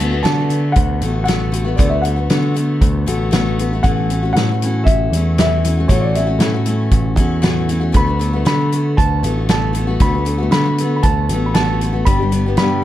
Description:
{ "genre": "folk rock and heartland rock", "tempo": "117 BPM", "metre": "4/4", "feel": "straight", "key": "D major", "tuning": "A4 = 436 Hz", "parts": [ { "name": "dark concert grand piano", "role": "melody", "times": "0.0-12.8 s", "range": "C#5 to B5", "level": "-22 LUFS", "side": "equal", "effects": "none" }, { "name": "picked steel-string acoustic guitar", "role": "accompaniment", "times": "0.0-12.8 s", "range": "G2 to G4", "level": "-21 LUFS", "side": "left 4 dB", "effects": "none" }, { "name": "picked electric bass", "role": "bass", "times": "0.0-12.8 s", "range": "G1 to D3", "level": "-18 LUFS", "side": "right 1 dB", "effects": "none" }, { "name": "natural country drum kit", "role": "drums", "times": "0.0-12.7 s", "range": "hi-hat, kick drum, snare drum", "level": "-17 LUFS", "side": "equal", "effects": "none" } ], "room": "light reverb", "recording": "dark, warm production", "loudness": "-14 LUFS", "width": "side -13 dB against mid", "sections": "0.0-12.8 A section", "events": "none", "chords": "0.0 D6; 3.8 A6; 8.0 D6; 12.1 G" }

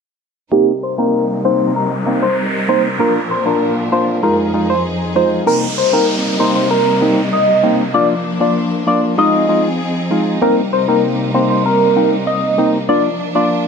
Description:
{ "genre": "dancehall", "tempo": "97 BPM", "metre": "4/4", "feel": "straight", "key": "C minor", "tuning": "A4 = 440 Hz", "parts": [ { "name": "soft struck synth lead", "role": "melody", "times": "0.5-13.5 s", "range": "G4 to Eb5", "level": "-16 LUFS", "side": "equal", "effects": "chorus, phaser, low-pass filter" }, { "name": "percussive organ stab", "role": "accompaniment", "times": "0.5-13.7 s", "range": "Ab3 to F4", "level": "-18 LUFS", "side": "equal", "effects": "chorus, low-pass filter" }, { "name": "bright studio string section", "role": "sustained chords", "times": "0.5-13.7 s", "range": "F2 to Bb4", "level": "-20 LUFS", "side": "equal", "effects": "low-pass filter" }, { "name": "noise sweep and downlifter", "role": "sound effects", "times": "1.2-10.4 s", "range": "none", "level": "-26 LUFS", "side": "right 1 dB", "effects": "none" } ], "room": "moderate lush hall reverb, RT60 2.5 s", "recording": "dark, warm production", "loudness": "-13 LUFS", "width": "side -6 dB against mid", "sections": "0.5-5.5 A section; 5.5-13.7 B section", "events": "filter sweep 0.5-5.5; noise sweep 1.2-5.5", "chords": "0.5 Cm7; 3.0 Bb; 4.2 Fm7; 5.5 Cm7; 7.9 Bb; 9.2 Fm7; 10.4 Cm7; 12.9 Bb" }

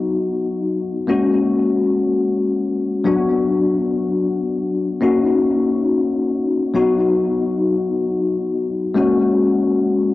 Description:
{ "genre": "pop", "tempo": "free time", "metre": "none", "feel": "none", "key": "unclear", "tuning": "A4 = 440 Hz", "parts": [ { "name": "bell-like tine electric piano", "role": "solo", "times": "0.0-10.1 s", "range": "F#3 to F#4", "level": "-16 LUFS", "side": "left 2 dB", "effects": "ensemble chorus, cassette tape, tape echo" } ], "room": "moderate spring reverb, RT60 2.6 s", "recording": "home recording on cassette", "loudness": "-16 LUFS", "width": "side -15 dB against mid", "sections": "0.0-9.0 A section; 9.0-10.1 B section", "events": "none", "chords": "0.0 B; 1.1 F#add9; 3.1 Bm; 5.0 D#m7; 6.7 B; 9.0 F#add9" }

